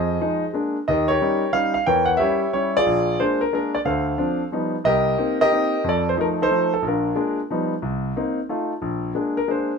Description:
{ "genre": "jazz", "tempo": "181 BPM", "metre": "3/4", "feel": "swing 64% on 8ths", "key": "Bb mixolydian", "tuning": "A4 = 441 Hz", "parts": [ { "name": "warm concert grand piano", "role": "solo", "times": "0.0-9.8 s", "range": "Bb1 to G5", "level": "-19 LUFS", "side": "equal", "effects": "none" } ], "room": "moderate studio reverb, RT60 0.6 s", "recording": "minimal, uncompressed stereo recording", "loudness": "-19 LUFS", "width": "side -5 dB against mid", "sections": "0.0-8.8 A section", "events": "none", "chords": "0.0 Fm7; 0.5 Bb7; 0.9 Eb7; 1.9 Edim7; 2.9 Bb7; 3.9 Dm7; 4.5 Gaug7; 4.8 Cm7; 5.8 F7; 6.8 Bb7; 7.5 Gaug7; 7.8 Cm7; 8.5 F7; 8.8 Bb7" }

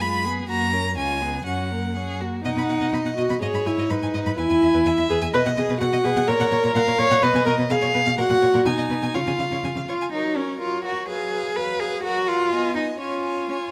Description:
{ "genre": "quick classical-period movement for string quartet", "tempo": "125 BPM", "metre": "2/4", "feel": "straight", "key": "B major, F# major from 6.3 s", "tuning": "A4 = 440 Hz", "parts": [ { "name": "rich violin", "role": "melody", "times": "0.0-13.7 s", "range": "A#4 to B5", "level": "-33 LUFS", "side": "equal", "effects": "none" }, { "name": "rich violin", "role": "second line", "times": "0.0-13.7 s", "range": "F4 to G#5", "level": "-31 LUFS", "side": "equal", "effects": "none" }, { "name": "dark viola", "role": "accompaniment", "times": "0.0-13.6 s", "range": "F#3 to C#5", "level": "-25 LUFS", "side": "equal", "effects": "none" }, { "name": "rich cello", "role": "bass", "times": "0.0-13.7 s", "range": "C#2 to B4", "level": "-28 LUFS", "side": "equal", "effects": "none" } ], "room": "moderate recital hall reverb, RT60 1.7 s", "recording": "none", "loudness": "-22 LUFS", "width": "mono", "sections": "0.0-2.5 A section; 2.5-10.1 B section; 10.1-13.7 A section", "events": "none", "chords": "0.5 F#; 1.0 C#7; 1.5 F#; 2.5 B; 3.4 G#m; 4.4 E; 5.3 B; 6.3 F#/A# (rootless); 7.2 G#m/B (rootless); 7.7 C#7/B (rootless); 8.2 F#/A#; 8.7 G#m/B; 9.1 C#; 10.1 F#; 11.1 Fdim/F#; 12.0 F#; 12.5 G#m/B; 13.0 C#" }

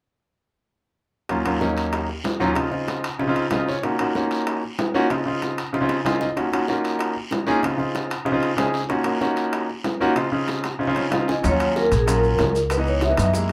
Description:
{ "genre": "Afro-Cuban jazz", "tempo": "190 BPM", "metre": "4/4", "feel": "straight", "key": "Eb minor", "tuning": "A4 = 438 Hz", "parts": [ { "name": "clear concert grand piano", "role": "accompaniment", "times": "1.3-13.5 s", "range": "Eb2 to Ab5", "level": "-24 LUFS", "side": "equal", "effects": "none" }, { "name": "bongos", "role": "percussion", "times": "1.3-13.5 s", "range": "none", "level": "-36 LUFS", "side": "equal", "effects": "none" }, { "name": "guiro", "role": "percussion", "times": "1.3-13.5 s", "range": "none", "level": "-40 LUFS", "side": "equal", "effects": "none" }, { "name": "timbales", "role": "percussion", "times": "1.3-13.5 s", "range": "none", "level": "-31 LUFS", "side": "equal", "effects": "none" }, { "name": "vibraphone with medium mallets", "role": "melody", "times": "11.3-13.3 s", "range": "Ab4 to Fb5", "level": "-24 LUFS", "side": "equal", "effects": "none" }, { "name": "upright bass", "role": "bass", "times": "11.4-13.5 s", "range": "Bb1 to Gb2", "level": "-24 LUFS", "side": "equal", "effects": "none" }, { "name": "maracas", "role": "percussion", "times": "11.4-13.5 s", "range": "none", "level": "-39 LUFS", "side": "equal", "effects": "none" } ], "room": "moderate small room reverb, RT60 0.5 s", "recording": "none", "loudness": "-22 LUFS", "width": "mono", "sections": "1.3-11.4 A section; 11.4-13.5 B section", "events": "grand piano fill 3.2-3.8, 5.9-6.4, 10.8-11.4; drum fill 5.9-6.4, 10.5-11.4", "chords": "1.3 Ebm9; 2.6 Dbmaj7; 3.8 Ebm9; 5.1 Dbmaj7; 6.4 Ebm9; 7.6 Dbmaj7; 8.9 Ebm9; 10.2 Dbmaj7; 11.4 Ebm7; 12.7 Dbm7" }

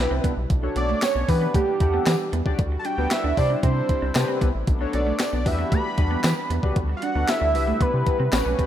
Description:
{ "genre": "early-eighties boogie funk", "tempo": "115 BPM", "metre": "4/4", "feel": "straight", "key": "unclear", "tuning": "A4 = 440 Hz", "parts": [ { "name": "fat analog lead", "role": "melody", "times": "0.0-8.6 s", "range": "G4 to B5", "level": "-26 LUFS", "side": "right 2 dB", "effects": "phaser" }, { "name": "chorused polysynth", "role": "accompaniment", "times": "0.0-8.7 s", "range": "C#4 to F#5", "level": "-30 LUFS", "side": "left 4 dB", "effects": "none" }, { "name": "brassy analog pad", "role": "sustained chords", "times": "0.0-8.7 s", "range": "B2 to F#4", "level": "-34 LUFS", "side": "left 1 dB", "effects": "chorus" }, { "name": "rubbery square bass", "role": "bass", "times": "0.0-8.6 s", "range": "A1 to E3", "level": "-24 LUFS", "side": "equal", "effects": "none" }, { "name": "electric guitar at the edge of break-up", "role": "riff", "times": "0.1-8.7 s", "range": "A3 to D4", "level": "-32 LUFS", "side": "right 5 dB", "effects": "wide subtle chorus" }, { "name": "clean 12-bit digital drum machine", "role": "drums", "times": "0.2-8.7 s", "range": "handclaps, hi-hat, kick drum, snare drum", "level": "-24 LUFS", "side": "equal", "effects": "overdrive" }, { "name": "tambourine", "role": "percussion", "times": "1.0-8.4 s", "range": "none", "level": "-41 LUFS", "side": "left 9 dB", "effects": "none" } ], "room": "light reverb, digital ambience", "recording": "rough home demo mix", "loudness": "-20 LUFS", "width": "side -11 dB against mid", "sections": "0.0-8.7 A section", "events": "none", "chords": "0.0 Cmaj7; 0.5 Bm7; 1.3 Em7; 2.6 Gmaj7/D; 3.4 Cmaj7; 4.7 Bm7; 5.5 Em7; 6.8 Gmaj7/D; 7.5 Cmaj7" }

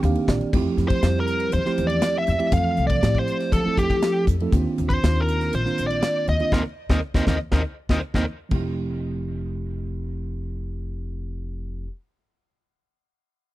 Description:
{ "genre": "electric jazz fusion", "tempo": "120 BPM", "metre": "4/4", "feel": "straight", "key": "F major", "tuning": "A4 = 440 Hz", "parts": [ { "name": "mellow tine electric piano", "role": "accompaniment", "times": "0.0-11.9 s", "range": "Eb3 to F5", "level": "-26 LUFS", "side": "right 4 dB", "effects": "none" }, { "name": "upright bass", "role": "bass", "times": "0.0-11.9 s", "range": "F1 to F3", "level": "-25 LUFS", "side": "left 1 dB", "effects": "none" }, { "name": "modern studio drum kit", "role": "drums", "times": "0.0-8.6 s", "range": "crash cymbal, hi-hat, kick drum, ride cymbal, snare drum", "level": "-24 LUFS", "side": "equal", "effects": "none" }, { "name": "biting lead guitar", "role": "melody", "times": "0.9-8.2 s", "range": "G4 to F5", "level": "-25 LUFS", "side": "left 1 dB", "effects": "overdrive" } ], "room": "little or no reverb", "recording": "dry, close 1970s-style studio recording", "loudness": "-20 LUFS", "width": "side -16 dB against mid", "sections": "0.5-8.5 A section; 8.5-12.5 B section", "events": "tine electric piano fill 0.0-0.5, 7.5-8.5; band accent 6.5-8.5", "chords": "0.0 Cm11; 0.5 Fmaj9; 4.5 Cm11; 8.5 Fmaj9" }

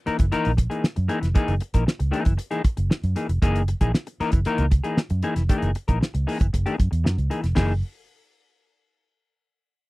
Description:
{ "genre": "funk", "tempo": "116 BPM", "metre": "4/4", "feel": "straight", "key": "F# mixolydian", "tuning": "A4 = 438 Hz", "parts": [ { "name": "clean electric guitar", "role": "accompaniment", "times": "0.1-7.7 s", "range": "E3 to A#4", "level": "-25 LUFS", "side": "left 2 dB", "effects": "none" }, { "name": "vintage muted fingered electric bass", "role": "bass", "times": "0.1-7.8 s", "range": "E#1 to F#2", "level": "-23 LUFS", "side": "equal", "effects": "none" }, { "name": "cloth-damped thuddy drum kit", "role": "drums", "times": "0.1-7.7 s", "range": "hi-hat, kick drum, snare drum", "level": "-21 LUFS", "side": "equal", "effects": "none" } ], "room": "little or no reverb", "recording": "dry, close 1970s-style studio recording", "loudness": "-20 LUFS", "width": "side -20 dB against mid", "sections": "0.0-7.6 A section; 7.6-9.6 B section", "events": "none", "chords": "0.0 F#13" }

